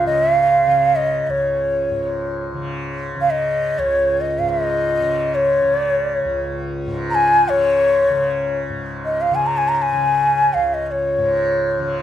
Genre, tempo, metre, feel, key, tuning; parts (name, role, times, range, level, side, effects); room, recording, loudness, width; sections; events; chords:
indian classical, Hindustani; free time; A4 = 440 Hz
breathy hollow bansuri; melody; 0.0-12.0 s; Db5 to Bb5; -16 LUFS; equal; plate reverb
tanpura; drone; 0.0-12.0 s; Db2 to Db3; -25 LUFS; left 1 dB
moderate small room reverb, RT60 0.5 s; dark, warm production; -16 LUFS; side -11 dB against mid
0.0-8.7 A section; 8.7-12.0 A section